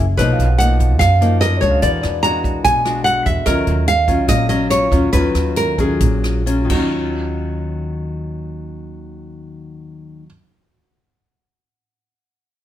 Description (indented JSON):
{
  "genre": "bossa nova",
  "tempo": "125-147 BPM",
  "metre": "4/4",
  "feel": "straight",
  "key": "Eb minor",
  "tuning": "A4 = 439 Hz",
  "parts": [
    { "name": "dark baby grand piano", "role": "accompaniment", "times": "0.0-12.6 s", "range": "Gb4 to F#5", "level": "-29 LUFS", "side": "right 7 dB", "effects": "none" },
    { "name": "nylon-string guitar", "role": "accompaniment", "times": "0.0-10.4 s", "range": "F#2 to F#4", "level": "-22 LUFS", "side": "left 4 dB", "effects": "none" },
    { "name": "upright bass", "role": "bass", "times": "0.0-10.2 s", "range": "Gb1 to F#2", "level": "-20 LUFS", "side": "right 1 dB", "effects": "none" },
    { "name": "nylon-string guitar", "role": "melody", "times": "0.2-10.3 s", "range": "Eb4 to Bb5", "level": "-18 LUFS", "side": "right 1 dB", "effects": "none" },
    { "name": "swinging big-band drum kit", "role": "drums", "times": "0.2-6.8 s", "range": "crash cymbal, hi-hat, kick drum, rim click", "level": "-23 LUFS", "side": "right 1 dB", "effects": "none" }
  ],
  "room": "light reverb",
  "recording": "none",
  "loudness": "-14 LUFS",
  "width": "side -11 dB against mid",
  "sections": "0.0-6.9 A section; 6.9-10.8 B section",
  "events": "slowing down 3.5-6.9",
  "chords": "0.2 Bmaj9#11; 1.8 E9; 3.5 Ebm9"
}